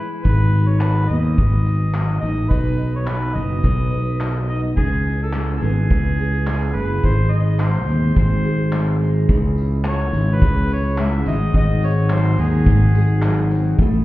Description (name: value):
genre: acoustic pop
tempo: 106 BPM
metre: 4/4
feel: swing 60% on 16ths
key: C# minor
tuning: A4 = 441 Hz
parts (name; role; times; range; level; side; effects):
- mellow harmonica; melody; 0.0-13.5 s; G#4 to E5; -27 LUFS; equal; plate reverb, ping-pong delay
- picked steel-string acoustic guitar; accompaniment; 0.0-14.0 s; G#2 to B4; -22 LUFS; equal; double-tracked left and right
- fretless electric bass; bass; 0.2-14.0 s; F#1 to D#2; -18 LUFS; equal; none
- loose indie drum kit; drums; 0.3-13.9 s; handclaps, kick drum, tambourine; -20 LUFS; equal; none
- hand-pumped harmonium; sustained chords; 9.3-14.0 s; C#3 to G#4; -32 LUFS; left 1 dB; plate reverb
room: light reverb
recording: heard muffled through a wall, stone room reverb, EQ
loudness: -16 LUFS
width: side -17 dB against mid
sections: 0.0-9.3 A section; 9.3-14.0 B section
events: none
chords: 0.3 G#m7; 2.5 B; 4.8 C#m7; 7.0 G#; 9.3 C#m; 11.3 G#7